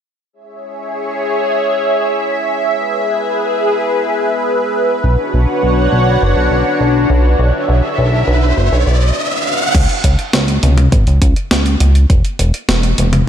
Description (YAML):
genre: synthwave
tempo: 102 BPM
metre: 4/4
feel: straight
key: unclear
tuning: A4 = 439 Hz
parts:
  - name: lush unison pad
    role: sustained chords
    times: 0.6-9.7 s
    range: D4 to F#5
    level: -15 LUFS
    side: equal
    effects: chorus, phaser, sidechain pumping
  - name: chorused synth bass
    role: bass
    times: 5.0-13.2 s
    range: E1 to C#2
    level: -12 LUFS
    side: equal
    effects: none
  - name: riser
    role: sound effects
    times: 7.1-9.7 s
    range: none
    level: -20 LUFS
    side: right 1 dB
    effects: none
  - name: clean 12-bit digital drum machine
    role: drums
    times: 9.7-13.2 s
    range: crash cymbal, hi-hat, snare drum, toms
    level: -16 LUFS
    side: equal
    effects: overdrive, gated reverb
  - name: electronic kick drum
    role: drums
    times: 9.7-12.2 s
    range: none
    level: -13 LUFS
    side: equal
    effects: none
room: light reverb, digital ambience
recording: none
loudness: -11 LUFS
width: side -9 dB against mid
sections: 0.3-9.7 A section; 9.7-13.3 B section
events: riser 7.1-9.7; break 9.2-9.7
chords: 0.3 C#m; 2.7 E; 5.0 Bmadd9; 9.7 C#5; 12.1 N.C.